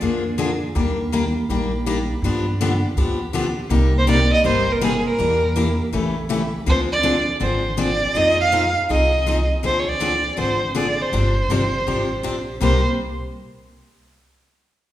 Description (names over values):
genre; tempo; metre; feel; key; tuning
acoustic string swing (jazz manouche); 162 BPM; 4/4; swing 63% on 8ths; C minor; A4 = 440 Hz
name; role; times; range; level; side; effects
picked steel-string acoustic guitar; accompaniment; 0.0-12.8 s; C3 to Ab4; -22 LUFS; left 2 dB; none
upright bass; bass; 0.0-12.8 s; G1 to G2; -23 LUFS; equal; none
warm violin; melody; 4.0-12.8 s; Ab4 to F5; -20 LUFS; right 1 dB; none
room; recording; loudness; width
wet recital hall reverb, RT60 1.5 s; recorded in a church or concert hall; -17 LUFS; side -13 dB against mid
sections
0.0-6.7 A section; 6.7-12.6 B section; 12.6-14.1 C section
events
none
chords
0.0 Bb7; 0.7 Ebmaj7; 2.2 G7; 3.7 Cm7; 5.2 Em7b5; 5.9 A7; 6.7 Dm7b5; 8.1 Fm7; 9.6 Dm7b5; 11.1 G7sus4; 12.6 Cm7